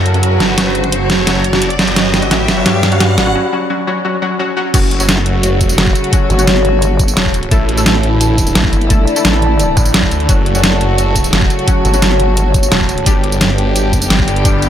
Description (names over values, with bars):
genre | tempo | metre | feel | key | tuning
dark technical drum and bass | 173 BPM | 4/4 | straight | F# phrygian | A4 = 440 Hz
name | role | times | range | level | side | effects
warm studio string section | sustained chords | 0.0-14.7 s | C#3 to G4 | -21 LUFS | left 1 dB | sidechain pumping
orchestra-hit-like synth stab | stabs | 0.0-14.7 s | F#3 to A4 | -20 LUFS | left 2 dB | built-in reverb, dub echo
snarling distorted saw bass | bass | 0.0-14.7 s | E1 to G2 | -16 LUFS | equal | distortion, tube saturation
riser | sound effects | 0.0-3.4 s | none | -21 LUFS | equal | none
warbly tape-like pad | texture | 0.0-14.7 s | E4 to B5 | -19 LUFS | equal | chorus, built-in reverb, sidechain pumping
dubstep drum kit | drums | 0.1-14.7 s | crash cymbal, hi-hat, snare drum, tambourine | -15 LUFS | right 1 dB | overdrive
electronic kick drum | drums | 0.6-2.6, 4.7-14.5 s | none | -14 LUFS | equal | overdrive, high-pass filter on kick, high-pass filter on room
vowel-sweep wobble bass | bass | 5.8-14.3 s | F#1 to A1 | -14 LUFS | equal | chorus
room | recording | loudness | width
light reverb | none | -10 LUFS | side -10 dB against mid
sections
0.0-4.7 A section; 4.7-14.7 B section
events
build-up 0.0-4.7; drum fill 0.0-3.4; riser 0.0-3.4; filter sweep on synth stab 0.0-4.7; break 3.4-4.7; drop 4.7-14.7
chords
0.0 F#m; 2.0 G; 4.7 F#m; 7.5 Asus4; 10.3 F#m; 13.1 G